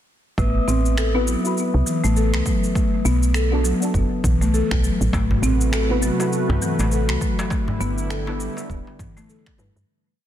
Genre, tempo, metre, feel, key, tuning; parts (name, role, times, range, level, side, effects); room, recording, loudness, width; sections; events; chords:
organic downtempo; 101 BPM; 4/4; swing 59% on 16ths; A dorian; A4 = 439 Hz
buzzing marimba with soft mallets; arpeggios; 0.4-9.7 s; E3 to A4; -24 LUFS; left 2 dB; low-pass filter, ping-pong delay
woody FM bass; bass; 0.4-9.8 s; D1 to G2; -20 LUFS; equal
electronic kick drum; drums; 0.4-9.6 s; -24 LUFS; equal; overdrive, small room ambience
electronic shaker and finger snaps; drums; 0.4-9.9 s; -30 LUFS; equal; overdrive, small room ambience, soft clipping on snare
bronze singing bowl; texture; 0.4-9.9 s; B3 to B4; -31 LUFS; equal
deep mellow chord stab; accompaniment; 1.1-9.7 s; B3 to B4; -28 LUFS; equal; chorus, sidechain pumping, ping-pong delay
warm analog pad; sustained chords; 5.1-9.9 s; C3 to B4; -27 LUFS; equal; chorus, sidechain pumping
darbuka; percussion; 5.1-9.7 s; -30 LUFS; left 1 dB
moderate concert hall reverb, RT60 1.9 s, studio reverb; dense, heavily limited modern master; -18 LUFS; side -11 dB against mid
0.4-9.9 groove
fade-out 6.7-9.9
0.4 Am69; 2.8 Bm7; 5.1 Am69; 7.5 G6